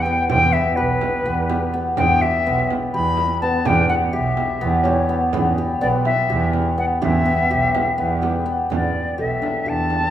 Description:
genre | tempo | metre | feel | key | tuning
contemporary instrumental, chamber music in an uneven meter | 250 BPM (eighths) | 7/8 | straight | E dorian | A4 = 441 Hz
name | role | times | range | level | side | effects
silver concert flute | melody | 0.0-10.1 s | B4 to B5 | -21 LUFS | left 2 dB | none
hammered dulcimer | arpeggios | 0.0-10.1 s | B3 to G4 | -22 LUFS | left 2 dB | none
bright double bass | bass | 0.0-10.1 s | B1 to E2 | -22 LUFS | right 3 dB | none
handpan | texture | 0.0-0.1, 3.4-10.1 s | G4 to C#5 | -29 LUFS | equal | none
frame drum | percussion | 0.3-10.1 s | none | -29 LUFS | right 4 dB | none
room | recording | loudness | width
wet recital hall reverb, RT60 1.4 s | recorded in a church or concert hall | -17 LUFS | side -11 dB against mid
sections
0.0-8.7 A section; 8.7-10.1 B section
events
none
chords
0.0 Em; 8.7 Em7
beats
0.06 | 0.30 0.54 0.78 1.02 1.26 1.50 1.74 | 1.98 2.22 2.46 2.70 2.94 3.18 3.42 | 3.66 3.90 4.14 4.38 4.62 4.86 5.10 | 5.34 5.58 5.82 6.06 6.30 6.54 6.78 | 7.02 7.26 7.50 7.74 7.98 8.22 8.46 | 8.70 8.94 9.18 9.42 9.66 9.90

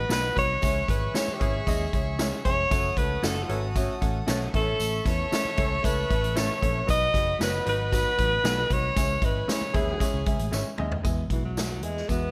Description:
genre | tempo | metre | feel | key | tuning
uptempo 1960s-style soul | 115 BPM | 4/4 | straight | E major | A4 = 436 Hz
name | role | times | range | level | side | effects
clear alto saxophone | melody | 0.0-12.3 s | E3 to D#5 | -30 LUFS | equal | tape echo
warm studio violin section | second line | 0.0-11.0 s | E4 to D#6 | -40 LUFS | equal | none
picked electric bass | bass | 0.0-12.3 s | F1 to E2 | -33 LUFS | equal | none
warm upright piano | accompaniment | 0.1-12.3 s | F#3 to E5 | -36 LUFS | equal | none
clean electric guitar | stabs | 0.1-10.6 s | B3 to C#5 | -37 LUFS | equal | none
swinging big-band drum kit | drums | 0.1-12.2 s | hi-hat, kick drum, snare drum, toms | -31 LUFS | equal | none
tambourine | percussion | 0.1-12.2 s | none | -44 LUFS | equal | none
warm saxophone section | second line | 1.4-10.1 s | E3 to B4 | -41 LUFS | equal | tape echo
room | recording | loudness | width
light reverb | none | -26 LUFS | mono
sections
0.0-11.1 A section; 11.1-12.3 B section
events
drum fill 10.5-11.1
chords
0.0 B; 0.6 C#m; 2.7 F#m; 4.5 A; 6.9 B; 9.0 C#m; 11.1 E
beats
0.11 | 0.63 1.15 1.67 2.19 | 2.71 3.24 3.76 4.28 | 4.80 5.32 5.84 6.36 | 6.88 7.40 7.92 8.45 | 8.97 9.49 10.01 10.53 | 11.05 11.57 12.09

